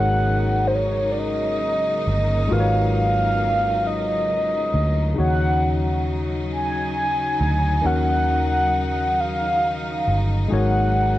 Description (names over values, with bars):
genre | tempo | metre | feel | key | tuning
slow six-eight R&B | 45 BPM (dotted quarters) | 6/8 | straight | Eb minor | A4 = 441 Hz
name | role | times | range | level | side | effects
mellow horn-like synth lead | melody | 0.0-11.2 s | C5 to Ab5 | -22 LUFS | equal | chorus
barky tine electric piano | accompaniment | 0.0-11.2 s | Db3 to Db5 | -26 LUFS | left 4 dB | overdrive
clear studio string section | sustained chords | 0.0-11.2 s | Db3 to Eb4 | -30 LUFS | right 1 dB | none
vintage muted fingered electric bass | bass | 0.0-11.2 s | G1 to Eb2 | -23 LUFS | right 1 dB | none
room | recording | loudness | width
light reverb | worn, warbling old tape, cassette tape, warbly pitch drift | -18 LUFS | side -14 dB against mid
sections
0.0-11.2 A section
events
none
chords
0.0 Ab13sus4; 5.2 Ebm7; 10.5 Ab9sus4